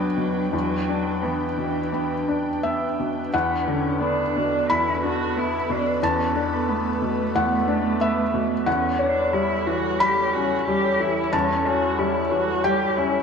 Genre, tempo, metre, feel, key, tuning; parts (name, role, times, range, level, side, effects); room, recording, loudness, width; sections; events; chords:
neoclassical piano and strings; 89 BPM; 4/4; uneven beats, rubato; A4 = 441 Hz
dark cello; second line; 0.0-13.2 s; E3 to G4; -26 LUFS; right 3 dB
felt-muted upright piano; accompaniment; 0.0-13.2 s; E2 to B5; -23 LUFS; left 2 dB
ethereal airy pad; sustained chords; 0.0-13.2 s; G3 to G5; -28 LUFS; equal; ensemble chorus, built-in reverb
wet spring reverb, RT60 1.6 s; heard from further back in the room; -20 LUFS; side -6 dB against mid
0.0-3.3 A section; 3.3-13.2 A section
0.0 Em7; 3.3 Bm7/E; 8.7 A7/E